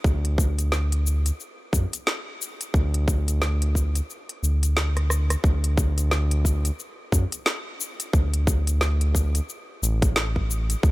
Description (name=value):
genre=organic downtempo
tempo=89 BPM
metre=4/4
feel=swing 60% on 16ths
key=D major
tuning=A4 = 439 Hz
part: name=round analog bass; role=bass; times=0.0-10.9 s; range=A1 to F#2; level=-22 LUFS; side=equal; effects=sidechain pumping
part: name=electronic kick drum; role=drums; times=0.0-10.9 s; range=none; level=-23 LUFS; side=equal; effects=overdrive
part: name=afro-pop drum kit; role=drums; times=0.1-10.9 s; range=hi-hat, rim click, shaker, snare drum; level=-28 LUFS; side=left 1 dB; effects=none
room=little or no reverb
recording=none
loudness=-21 LUFS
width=side -20 dB against mid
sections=0.0-5.4 A section; 5.4-10.9 B section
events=kick drops out 4.1-5.4; drum fill 4.9-5.4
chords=none